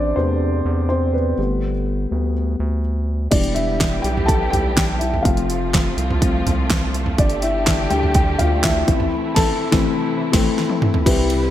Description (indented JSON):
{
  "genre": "piano-driven pop",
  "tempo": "124 BPM",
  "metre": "4/4",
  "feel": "straight",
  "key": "unclear",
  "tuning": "A4 = 441 Hz",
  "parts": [
    { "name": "dark upright piano", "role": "accompaniment", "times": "0.0-11.5 s", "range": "C3 to A5", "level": "-21 LUFS", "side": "left 3 dB", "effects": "none" },
    { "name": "round analog bass", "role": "bass", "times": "0.0-11.5 s", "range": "E1 to E2", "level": "-22 LUFS", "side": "right 1 dB", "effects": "none" },
    { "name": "warm studio string section", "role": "sustained chords", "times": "3.3-11.5 s", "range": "C3 to B4", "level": "-27 LUFS", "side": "right 1 dB", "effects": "none" },
    { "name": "pop drum kit", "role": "drums", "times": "3.3-11.4 s", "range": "crash cymbal, handclaps, hi-hat, kick drum, ride cymbal, snare drum, toms", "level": "-19 LUFS", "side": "right 1 dB", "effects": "none" }
  ],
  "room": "light reverb, digital ambience",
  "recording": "bright 1980s-style digital production",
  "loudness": "-16 LUFS",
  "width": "side -12 dB against mid",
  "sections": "0.0-3.3 A section; 3.3-11.1 B section",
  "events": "upright piano solo 0.0-3.3, 3.3-11.1; band accent 9.1-11.1; drum fill 10.6-11.1",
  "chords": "0.0 Amadd9; 1.4 Gadd9; 3.3 Em; 5.3 F; 7.2 Gsus2; 8.9 Am"
}